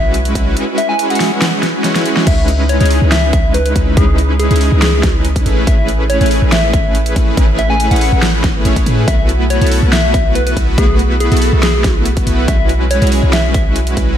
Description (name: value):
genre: future bass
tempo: 141 BPM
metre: 4/4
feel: half-time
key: E major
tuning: A4 = 440 Hz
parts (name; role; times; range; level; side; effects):
- soft struck synth lead; melody; 0.0-13.7 s; G#4 to G#5; -19 LUFS; left 2 dB; chorus, sidechain pumping, tape echo
- soft supersaw; riff; 0.0-14.2 s; G#3 to C#5; -17 LUFS; equal; sidechain pumping, tape echo
- warm 808-style bass; bass; 0.0-14.2 s; A1 to A2; -14 LUFS; equal; sidechain pumping
- big-room dance drum kit; drums; 0.1-14.1 s; crash cymbal, hi-hat, snare drum; -19 LUFS; equal; overdrive, small room ambience
- electronic kick drum; drums; 0.4-14.1 s; none; -15 LUFS; equal; overdrive, small room ambience
room: light reverb, digital ambience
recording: none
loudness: -10 LUFS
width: side -10 dB against mid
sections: 0.0-14.2 A section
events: drum fill 1.8-2.3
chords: 0.0 E69/B; 2.3 C#m9; 5.5 Amaj9; 9.1 B7sus4; 12.5 E69/B